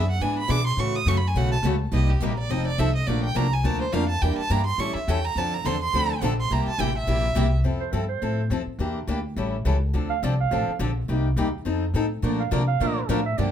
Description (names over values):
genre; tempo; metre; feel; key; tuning
acoustic string swing (jazz manouche); 210 BPM; 4/4; swing 57% on 8ths; F major; A4 = 440 Hz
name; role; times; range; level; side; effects
clear violin; melody; 0.0-7.6 s; G4 to Eb6; -27 LUFS; right 3 dB; plate reverb
picked steel-string acoustic guitar; accompaniment; 0.0-13.5 s; C3 to Bb4; -28 LUFS; left 4 dB; none
picked steel-string acoustic guitar; accompaniment; 0.0-7.5, 12.2-13.5 s; C3 to B4; -31 LUFS; right 7 dB; none
upright bass; bass; 0.0-13.5 s; F1 to C3; -24 LUFS; equal; none
mellow clarinet; second line; 7.8-13.5 s; A4 to F5; -28 LUFS; right 10 dB; none
room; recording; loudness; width
light reverb; none; -22 LUFS; side -9 dB against mid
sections
0.0-7.6 A section; 7.6-13.5 A section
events
violin solo 0.0-7.6; clarinet solo 7.6-13.5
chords
0.0 E7; 0.8 A69; 1.9 Cm7; 2.5 F7; 3.1 Bbmaj7; 4.2 Em7b5; 4.8 A7; 5.4 Dm7; 6.5 C7; 7.6 Fmaj7; 8.8 Em7b5; 9.4 A7; 9.9 Dm7; 11.1 Cm7; 11.7 F7; 12.2 Bbmaj7